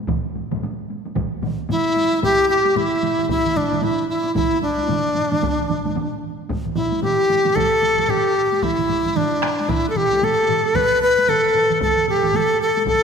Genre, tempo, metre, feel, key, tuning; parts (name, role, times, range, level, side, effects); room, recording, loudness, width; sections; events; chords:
japanese traditional, taiko drum ensemble; 113 BPM; 4/4; swing 60% on 16ths; A suspended pentatonic; A4 = 441 Hz
taiko ensemble; percussion; 0.1-13.0 s; -30 LUFS; right 1 dB
taiko ensemble; percussion; 0.1-13.0 s; -30 LUFS; left 4 dB
taiko ensemble; percussion; 0.1-13.0 s; -28 LUFS; right 8 dB
taiko ensemble; percussion; 0.1-13.0 s; -31 LUFS; equal
bright large dizi; melody; 1.7-13.0 s; D4 to B4; -17 LUFS; left 1 dB
wet scoring stage reverb, RT60 1.9 s; -17 LUFS; side -6 dB against mid
0.0-2.2 A section; 2.2-13.0 B section